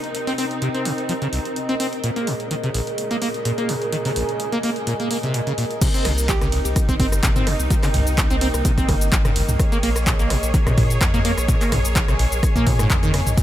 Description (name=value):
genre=acid house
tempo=127 BPM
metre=4/4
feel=swing 54% on 16ths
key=unclear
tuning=A4 = 440 Hz
part: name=hollow square pluck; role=melody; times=0.0-0.1, 6.3-6.7 s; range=Eb4 to G4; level=-33 LUFS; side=right 2 dB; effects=chorus, ping-pong delay
part: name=clear symphonic string section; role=sustained chords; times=0.0-13.4 s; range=Bb2 to Db5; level=-29 LUFS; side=right 1 dB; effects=sidechain pumping
part: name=punchy analog drum machine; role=drums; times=0.0-13.4 s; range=crash cymbal, handclaps, hi-hat, ride cymbal, rim click, shaker, toms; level=-26 LUFS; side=equal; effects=overdrive
part: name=granular cloud pad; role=texture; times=0.0-13.4 s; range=C4 to Ab5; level=-28 LUFS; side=equal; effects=built-in reverb, sidechain pumping
part: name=acid bass, saw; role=riff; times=0.3-13.4 s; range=Bb1 to C4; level=-24 LUFS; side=equal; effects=tube saturation, lush chorus, vintage 12-bit sampler grit, sidechain pumping, ping-pong delay
part: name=electronic kick drum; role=drums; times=5.8-13.4 s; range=none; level=-20 LUFS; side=equal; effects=overdrive
part: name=warm sub bass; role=bass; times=6.1-13.4 s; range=G1 to Bb2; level=-23 LUFS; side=equal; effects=sidechain pumping
room=light reverb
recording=none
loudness=-18 LUFS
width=side -12 dB against mid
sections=0.0-5.8 A section; 5.8-13.4 B section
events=filter sweep on string section 0.0-5.8; drop 5.8-13.4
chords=0.0 Cm7; 2.0 Bbm7; 5.8 Cm7; 9.6 Bbm7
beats=| 0.15 0.62 1.09 1.56 | 2.04 2.51 2.98 3.45 | 3.93 4.40 4.87 5.34 | 5.82 6.29 6.76 7.23 | 7.71 8.18 8.65 9.12 | 9.60 10.07 10.54 11.01 | 11.48 11.96 12.43 12.90 | 13.37